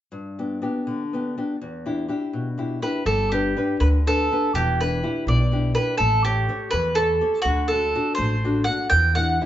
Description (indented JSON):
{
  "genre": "italian folk, Italian serenade",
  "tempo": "82 BPM (dotted quarters)",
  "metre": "6/8",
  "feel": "straight",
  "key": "G major",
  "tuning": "A4 = 438 Hz",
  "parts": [
    { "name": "nylon-string guitar", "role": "accompaniment", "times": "0.1-9.5 s", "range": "E2 to C#5", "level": "-26 LUFS", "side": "left 2 dB", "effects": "none" },
    { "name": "mandolin", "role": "melody", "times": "2.8-9.5 s", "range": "F#4 to G5", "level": "-22 LUFS", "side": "right 1 dB", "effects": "none" },
    { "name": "upright bass", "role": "bass", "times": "3.1-9.4 s", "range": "E1 to E2", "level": "-23 LUFS", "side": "equal", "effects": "none" }
  ],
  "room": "wet large studio reverb, RT60 0.8 s",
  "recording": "band playing live in one room, nothing above 7.8 kHz",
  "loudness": "-20 LUFS",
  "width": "side -12 dB against mid",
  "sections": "0.1-3.1 A section; 3.1-9.5 B section",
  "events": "none",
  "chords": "0.1 G; 1.6 Em7; 3.1 G; 4.5 Em7; 6.0 A7; 7.4 D; 8.9 Em7",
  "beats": "| 0.11 0.85 | 1.59 2.32 | 3.06 3.79 | 4.53 5.26 | 5.98 6.71 | 7.44 8.17 | 8.90"
}